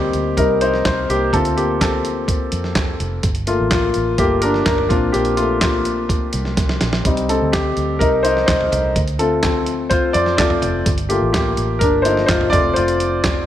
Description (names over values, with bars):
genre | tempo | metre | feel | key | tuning
piano-driven pop | 126 BPM | 4/4 | straight | unclear | A4 = 440 Hz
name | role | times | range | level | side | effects
clear grand piano | accompaniment | 0.0-13.5 s | G3 to D5 | -17 LUFS | left 1 dB | none
vintage muted fingered electric bass | bass | 0.0-13.5 s | F1 to F2 | -24 LUFS | right 1 dB | none
dusty soul sampler-style drum kit | drums | 0.1-13.4 s | handclaps, hi-hat, kick drum, snare drum, toms | -20 LUFS | right 1 dB | none
room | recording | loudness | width
light reverb | none | -15 LUFS | side -11 dB against mid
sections
0.0-13.5 A section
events
grand piano solo 0.0-13.5; drum fill 6.6-7.0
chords
0.0 Cm; 1.3 Dm7; 3.2 Gm7; 4.9 Bbadd9; 7.0 Cm; 9.0 Dm7; 10.9 Gm7; 12.5 F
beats
0.38 0.85 | 1.33 1.81 2.28 2.76 | 3.24 3.71 4.19 4.67 | 5.14 5.62 6.10 6.57 | 7.05 7.53 8.00 8.48 | 8.96 9.43 9.91 10.38 | 10.86 11.34 11.81 12.29 | 12.77 13.24